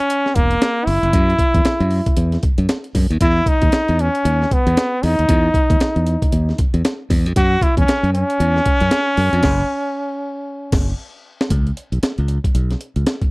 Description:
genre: funk.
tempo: 116 BPM.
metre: 4/4.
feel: swing 60% on 16ths.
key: unclear.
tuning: A4 = 444 Hz.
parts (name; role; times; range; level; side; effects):
brilliant trombone; melody; 0.0-10.9 s; A#3 to F#4; -18 LUFS; equal; none.
breakbeat sampler-style drum kit; drums; 0.0-13.3 s; crash cymbal, hi-hat, kick drum, snare drum; -18 LUFS; equal; none.
modern bright fingered electric bass; bass; 0.4-13.0 s; E1 to F#2; -17 LUFS; equal; none.
room: digital ambience.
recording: dry, close 1970s-style studio recording.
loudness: -15 LUFS.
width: side -25 dB against mid.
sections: 0.0-11.5 A section; 11.5-13.3 B section.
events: band accent 9.4-11.5; drum fill 11.0-11.5.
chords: 0.0 F#7(no3); 3.2 E5; 7.4 F#5; 11.5 C#7(no3).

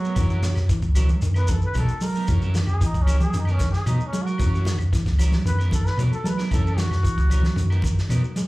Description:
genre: afrobeat.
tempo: 114 BPM.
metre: 4/4.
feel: straight.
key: F# mixolydian.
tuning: A4 = 440 Hz.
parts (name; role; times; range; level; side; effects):
trombone with straight mute; melody; 0.0-7.8 s; F#3 to B4; -31 LUFS; equal; slapback echo.
electric guitar through a small old amp; arpeggios; 0.0-8.5 s; D#3 to G#3; -32 LUFS; left 3 dB; slapback echo.
electric guitar at the edge of break-up; stabs; 0.0-8.4 s; F#3 to A#4; -36 LUFS; right 5 dB; spring reverb, slapback echo.
hollow-body short-scale fingered electric bass; bass; 0.0-8.5 s; C#2 to F#3; -21 LUFS; equal; none.
shekere; percussion; 0.0-8.5 s; none; -32 LUFS; right 1 dB; none.
vintage drum kit; drums; 0.2-8.5 s; hi-hat, kick drum, snare drum; -27 LUFS; equal; none.
claves; percussion; 0.2-8.2 s; none; -44 LUFS; left 2 dB; slapback echo.
congas; percussion; 0.2-8.2 s; none; -31 LUFS; right 1 dB; none.
room: little or no reverb.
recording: live gig heard through the venue's PA, club reverb.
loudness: -19 LUFS.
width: side -20 dB against mid.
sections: 0.0-8.5 A section.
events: trombone solo 0.0-8.5.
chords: 0.2 F#7; 1.2 G#m9/F#; 2.3 F#7; 3.3 G#m9/F#; 4.4 F#7; 5.5 G#m9/F#; 6.5 F#7; 7.6 G#m9/F# (rootless).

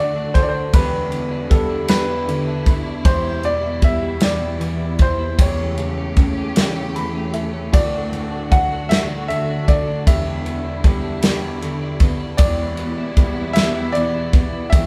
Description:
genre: six-eight pop ballad.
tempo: 52 BPM (dotted quarters).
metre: 6/8.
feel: straight.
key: E minor.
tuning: A4 = 440 Hz.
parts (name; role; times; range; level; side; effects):
warm concert grand piano; melody; 0.0-14.9 s; A4 to F#5; -26 LUFS; equal; none.
warm upright piano; accompaniment; 0.0-14.9 s; D1 to B5; -29 LUFS; equal; none.
warm studio string section; sustained chords; 0.0-14.9 s; E2 to G4; -30 LUFS; equal; none.
twelve-string electric guitar; arpeggios; 0.0-14.9 s; E3 to G4; -31 LUFS; equal; none.
natural country drum kit; drums; 0.3-14.9 s; kick drum, ride cymbal, snare drum; -19 LUFS; equal; none.
room: moderate studio reverb, RT60 0.6 s.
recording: band playing live in one room.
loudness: -19 LUFS.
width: mono.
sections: 0.0-14.9 A section.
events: upright piano fill 6.6-7.7.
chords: 0.0 D; 0.7 Em7; 5.4 A7/E; 7.7 D; 10.1 Em7.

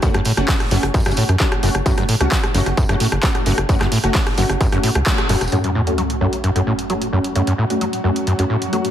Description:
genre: driving peak-time techno.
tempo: 131 BPM.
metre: 4/4.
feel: straight.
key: F# minor.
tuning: A4 = 445 Hz.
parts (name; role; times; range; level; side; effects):
overdriven acid bass; riff; 0.0-8.8 s; F#2 to F#3; -21 LUFS; equal; analog chorus, sidechain pumping, digital delay.
rave stab; stabs; 0.0-8.9 s; A3 to F#4; -22 LUFS; equal; chorus, built-in reverb, sidechain pumping, digital delay.
electronic kick drum; drums; 0.0-5.2 s; none; -19 LUFS; equal; distortion, overdrive.
punchy analog drum machine; drums; 0.0-8.9 s; handclaps, hi-hat, rim click; -23 LUFS; right 1 dB; overdrive, sidechain pumping on hats.
warm soul drum kit; drums; 0.0-5.5 s; hi-hat, snare drum, tambourine; -34 LUFS; right 1 dB; none.
tight sequencer bass; bass; 0.1-5.5 s; E1 to F#2; -20 LUFS; equal; sidechain pumping.
swarming drone; drone; 6.9-8.9 s; F#3 to F#4; -29 LUFS; left 2 dB; built-in reverb, phaser, sidechain pumping.
sub drop; sound effects; 5.5-7.4 s; none; -26 LUFS; equal; none.
room: light reverb.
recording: heavily compressed radio sound.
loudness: -15 LUFS.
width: side -10 dB against mid.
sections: 0.0-5.5 A section; 5.5-8.9 B section.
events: band accent 5.1; impact 5.5-7.4.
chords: 0.0 F#m.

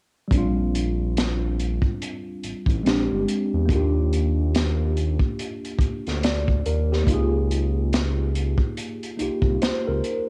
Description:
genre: R&B, neo-soul.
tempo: 71 BPM.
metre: 4/4.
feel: swing 61% on 16ths.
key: Bb major.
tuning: A4 = 438 Hz.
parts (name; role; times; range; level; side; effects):
mellow tine electric piano; accompaniment; 0.3-10.3 s; G3 to D5; -28 LUFS; equal; phaser, plate reverb.
smooth synth bass; bass; 0.3-10.0 s; G1 to E2; -26 LUFS; equal; none.
crunchy breakbeat drum kit; drums; 0.3-10.3 s; hi-hat, kick drum, snare drum; -27 LUFS; equal; none.
room: light reverb.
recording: home recording on cassette.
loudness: -23 LUFS.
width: mono.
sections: 0.3-10.3 A section.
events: none.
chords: 0.3 Bb69; 2.8 Bb13; 3.7 Ebmaj9; 7.1 Db6.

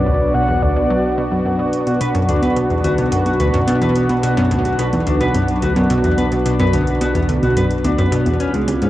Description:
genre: ambient, sequencer-driven space music.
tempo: 108 BPM.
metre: 4/4.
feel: straight.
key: B minor.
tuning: A4 = 443 Hz.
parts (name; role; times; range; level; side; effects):
soft octave-layered synth lead; melody; 0.0-1.5 s; D5 to F#5; -24 LUFS; left 1 dB; chorus, shimmer reverb, ping-pong delay.
sweeping resonant pad; sustained chords; 0.0-8.9 s; C#3 to F#4; -19 LUFS; right 1 dB; chorus, shimmer reverb.
analog pluck; riff; 0.0-8.9 s; C#2 to F#3; -19 LUFS; equal; chorus, ping-pong delay.
analog drone; bass; 0.0-8.9 s; B1 to C#2; -23 LUFS; equal; chorus.
electronic hi-hat and congas; percussion; 1.7-8.9 s; none; -26 LUFS; equal; ping-pong delay.
mellow electric guitar; arpeggios; 1.9-8.9 s; G#3 to B4; -22 LUFS; left 2 dB; auto-pan, shimmer reverb, ping-pong delay.
room: moderate huge ambient reverb, RT60 8.7 s.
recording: worn, warbling old tape, cassette tape, warbly pitch drift.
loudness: -14 LUFS.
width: side -14 dB against mid.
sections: 0.0-8.9 A section.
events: none.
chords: 0.0 Bm.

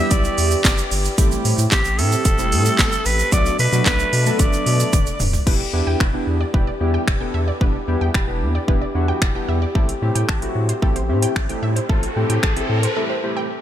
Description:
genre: dance-pop.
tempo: 112 BPM.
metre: 4/4.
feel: straight.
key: E minor.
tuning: A4 = 439 Hz.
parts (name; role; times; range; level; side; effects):
growling alto saxophone; melody; 0.0-5.2 s; G4 to E5; -23 LUFS; equal; ping-pong delay.
chorused polysynth; accompaniment; 0.0-13.5 s; F#3 to A4; -25 LUFS; equal; sidechain pumping.
mellow French horn section; sustained chords; 0.0-13.6 s; E3 to A4; -29 LUFS; left 2 dB; sidechain pumping.
saturated sub bass; bass; 0.1-12.9 s; D1 to B2; -21 LUFS; equal; sidechain pumping.
house drum kit; drums; 0.1-13.0 s; crash cymbal, finger snaps, handclaps, hi-hat, kick drum, shaker, snare drum, toms; -19 LUFS; equal; none.
tube shaker; percussion; 0.1-5.5 s; none; -34 LUFS; right 10 dB; none.
wide unison pluck; arpeggios; 5.5-13.4 s; A4 to B5; -31 LUFS; right 3 dB; sidechain pumping, ping-pong delay.
riser; sound effects; 11.0-13.0 s; none; -28 LUFS; left 1 dB; none.
room: light reverb, digital ambience.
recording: bright 1980s-style digital production.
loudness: -16 LUFS.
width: side -11 dB against mid.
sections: 0.0-5.5 A section; 5.5-13.6 B section.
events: drum fill 4.9-5.5; riser 11.0-13.6; break 13.0-13.6.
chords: 0.0 Em7; 1.2 Am7; 3.3 Bm7; 5.5 Em7; 9.8 Am7.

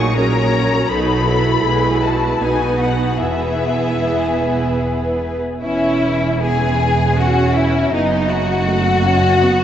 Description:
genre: classical, slow romantic movement for string orchestra.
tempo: 71-86 BPM.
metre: 3/4.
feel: rubato.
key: E major.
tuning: A4 = 440 Hz.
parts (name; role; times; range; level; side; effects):
rich studio violin section; melody; 0.0-9.6 s; D#5 to C#6; -23 LUFS; left 5 dB; none.
rich symphonic violin section; second line; 0.0-9.6 s; D#4 to C#5; -19 LUFS; left 2 dB; none.
rich studio viola section; accompaniment; 0.0-9.6 s; F#3 to E4; -21 LUFS; right 1 dB; none.
rich symphonic cello section; bass; 0.0-9.6 s; E2 to B2; -24 LUFS; right 2 dB; none.
warm symphonic double bass section; bass; 0.0-9.6 s; E1 to B1; -21 LUFS; right 3 dB; none.
room: wet cathedral reverb, RT60 5.5 s.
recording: in a vast, echoing space, nothing above 7.9 kHz.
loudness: -14 LUFS.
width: side -10 dB against mid.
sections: 0.0-5.6 A section; 5.6-9.6 A section.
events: none.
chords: 0.0 F#/A#; 0.9 B7; 1.6 E/B; 2.4 B; 3.2 E; 7.9 B5/F#.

